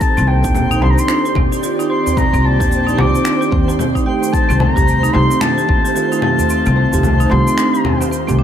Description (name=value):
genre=organic downtempo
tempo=111 BPM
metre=4/4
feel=swing 60% on 16ths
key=C dorian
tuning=A4 = 439 Hz
part: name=dark clarinet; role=melody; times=0.0-8.1 s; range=G5 to D6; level=-19 LUFS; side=left 2 dB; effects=digital delay
part: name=airy breathy pad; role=sustained chords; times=0.0-8.4 s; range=Eb3 to D5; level=-23 LUFS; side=equal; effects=chorus, sidechain pumping
part: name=marimba with medium hard mallets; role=arpeggios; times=0.0-8.4 s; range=A3 to G4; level=-20 LUFS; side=equal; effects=digital delay
part: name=electronic cabasa, congas and finger snaps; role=drums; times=0.0-8.4 s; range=none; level=-23 LUFS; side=left 2 dB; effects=none
part: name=electronic kick drum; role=drums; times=0.0-5.8 s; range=none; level=-18 LUFS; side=equal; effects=none
part: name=twinkling granular texture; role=texture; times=0.0-8.4 s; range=C5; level=-28 LUFS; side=right 2 dB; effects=built-in reverb
part: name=upright bass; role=bass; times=0.2-8.4 s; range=Bb1 to Eb2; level=-16 LUFS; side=equal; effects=sidechain pumping
part: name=darbuka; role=percussion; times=0.3-8.4 s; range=none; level=-25 LUFS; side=right 1 dB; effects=none
part: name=bell-like tine electric piano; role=accompaniment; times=0.4-8.4 s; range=Eb3 to D5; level=-22 LUFS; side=right 5 dB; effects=phaser, sidechain pumping, digital delay
room=light reverb, small room ambience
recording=none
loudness=-12 LUFS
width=side -9 dB against mid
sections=0.0-8.4 A section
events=kick drops out 6.5-8.4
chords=0.0 Cmadd9; 4.3 F7/C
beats=| 0.01 0.55 1.09 1.63 | 2.17 2.71 3.25 3.79 | 4.33 4.87 5.41 5.95 | 6.50 7.04 7.58 8.12